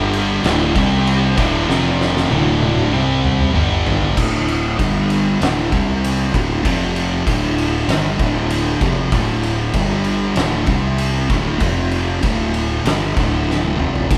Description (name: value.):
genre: stoner and doom metal.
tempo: 97 BPM.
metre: 4/4.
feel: straight.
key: D minor.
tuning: A4 = 445 Hz.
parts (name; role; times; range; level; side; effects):
heavy high-gain guitar; riff; 0.0-4.2 s; D2 to C4; -23 LUFS; equal; distortion.
thick fuzz guitar; riff; 0.0-14.2 s; D2 to C4; -25 LUFS; equal; distortion.
thick fuzz guitar; riff; 0.0-14.2 s; D2 to C4; -24 LUFS; equal; distortion.
fuzz fingered electric bass; bass; 0.0-14.2 s; D1 to C2; -25 LUFS; equal; overdrive.
oversized low-tuned drum kit; drums; 0.1-14.2 s; crash cymbal, kick drum, ride cymbal, snare drum, splash cymbal, toms; -22 LUFS; equal; none.
room: light reverb.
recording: band playing live in one room.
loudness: -17 LUFS.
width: mono.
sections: 0.0-4.2 A section; 4.2-14.2 B section.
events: drum fill 1.7-4.2, 13.5-14.1.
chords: 0.4 D5; 0.8 C5; 1.4 D5; 1.7 F5; 2.3 D5; 2.9 C5; 3.5 G5; 4.2 D5; 4.8 G5; 5.4 D5; 5.7 C5; 6.3 D5; 6.6 F5; 7.3 Dm; 9.8 G5; 10.4 D5; 10.7 C5; 11.3 D5; 11.6 F5; 12.2 Dm.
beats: 0.45 1.07 | 1.69 2.31 2.93 3.55 | 4.17 4.79 5.41 6.03 | 6.65 7.27 7.89 8.51 | 9.13 9.75 10.37 10.99 | 11.62 12.24 12.86 13.48 | 14.11.